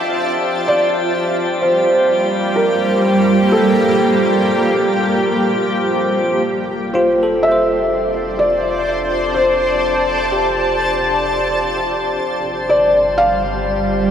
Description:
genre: ambient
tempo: 63 BPM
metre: 3/4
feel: straight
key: F major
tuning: A4 = 439 Hz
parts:
  - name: felt-muted upright piano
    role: melody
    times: 0.0-14.1 s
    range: A4 to F5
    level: -18 LUFS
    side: equal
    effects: diffuse ambient delay
  - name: granular cloud pad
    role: sustained chords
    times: 0.0-14.1 s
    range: G3 to A5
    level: -17 LUFS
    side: equal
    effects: built-in reverb
  - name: pedal harmonium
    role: drone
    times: 0.0-14.1 s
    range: F3 to C4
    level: -25 LUFS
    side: equal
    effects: none
  - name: drifting glass-harmonics texture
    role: texture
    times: 0.0-14.1 s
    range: G4 to C6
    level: -26 LUFS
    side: equal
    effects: chorus, built-in reverb
  - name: warm sub bass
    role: bass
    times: 6.5-14.1 s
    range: F1 to G1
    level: -32 LUFS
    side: equal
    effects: none
  - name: bell-like tine electric piano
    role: arpeggios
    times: 7.0-14.1 s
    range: F4 to C5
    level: -23 LUFS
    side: equal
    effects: diffuse ambient delay
room: wet huge ambient reverb, RT60 7.5 s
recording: none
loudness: -14 LUFS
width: side -8 dB against mid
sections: 0.0-6.5 A section; 6.5-14.1 B section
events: fade-in on sub bass 6.5-14.1; fade-in on synth texture 6.5-14.1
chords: 0.0 F6; 0.7 Gm9; 6.5 F6; 12.2 Gm9

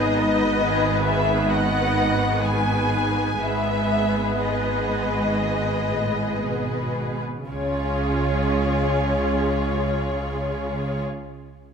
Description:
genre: cinematic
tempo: 56-72 BPM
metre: 4/4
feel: rubato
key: unclear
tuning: A4 = 440 Hz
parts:
  - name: muted symphonic violin section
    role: melody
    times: 0.0-11.0 s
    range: C#5 to G#5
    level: -27 LUFS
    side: left 4 dB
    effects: none
  - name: muted symphonic violin section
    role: second line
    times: 0.0-11.0 s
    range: E#4 to D#5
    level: -28 LUFS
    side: left 3 dB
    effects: none
  - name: muted symphonic viola section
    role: accompaniment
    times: 0.0-11.0 s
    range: D#3 to D#4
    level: -26 LUFS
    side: right 2 dB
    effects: none
  - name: muted symphonic cello section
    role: bass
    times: 0.0-11.0 s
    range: G#2 to C#3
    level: -28 LUFS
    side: right 3 dB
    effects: none
  - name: muted symphonic double bass section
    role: bass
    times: 0.0-11.0 s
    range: G#1 to C#2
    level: -29 LUFS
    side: right 3 dB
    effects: none
room: moderate scoring stage reverb, RT60 1.9 s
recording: close, detailed microphones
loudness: -20 LUFS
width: side -6 dB against mid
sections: 0.0-7.5 A section; 7.5-11.7 B section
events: slowing down 0.0-7.5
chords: 0.0 G#m; 7.5 C#

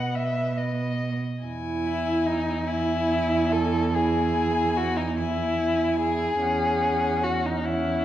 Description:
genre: classical, slow romantic movement for string quartet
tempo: 48 BPM (dotted quarters)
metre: 12/8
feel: rubato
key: E major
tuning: A4 = 440 Hz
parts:
  - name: muted violin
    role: melody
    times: 0.0-8.0 s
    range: D#5 to G#5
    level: -34 LUFS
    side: left 7 dB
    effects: none
  - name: muted violin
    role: second line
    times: 0.0-8.0 s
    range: D#4 to F#5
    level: -26 LUFS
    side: left 2 dB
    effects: none
  - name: muted viola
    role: accompaniment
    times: 0.0-8.0 s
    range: C#4 to B4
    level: -30 LUFS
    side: right 3 dB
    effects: none
  - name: muted cello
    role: bass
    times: 0.0-8.0 s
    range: E2 to B2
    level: -28 LUFS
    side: right 3 dB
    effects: none
room: wet recital hall reverb, RT60 1.2 s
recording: dark, warm production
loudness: -22 LUFS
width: side -12 dB against mid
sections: 0.0-1.4 A section; 1.4-8.0 B section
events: none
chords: 0.0 B; 1.4 E; 6.4 F#5/E

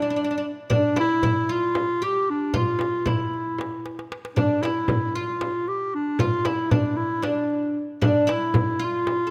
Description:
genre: Turkish makam ensemble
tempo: 230 BPM (eighths)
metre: 7/8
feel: straight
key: unclear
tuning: A4 = 440 Hz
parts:
  - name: warm clarinet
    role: melody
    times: 0.0-9.3 s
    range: D4 to G4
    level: -26 LUFS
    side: equal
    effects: none
  - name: oud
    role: second line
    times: 0.0-9.3 s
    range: D4 to A4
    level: -31 LUFS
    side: equal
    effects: none
  - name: darbuka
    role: percussion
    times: 0.2-9.2 s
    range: none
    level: -31 LUFS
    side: equal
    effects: none
  - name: frame drum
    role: percussion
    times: 0.7-9.2 s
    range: none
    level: -30 LUFS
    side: equal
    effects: none
room: moderate concert hall reverb, RT60 2.0 s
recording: close, detailed microphones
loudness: -24 LUFS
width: mono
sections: 0.0-9.3 A section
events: drum fill 3.8-4.4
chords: none

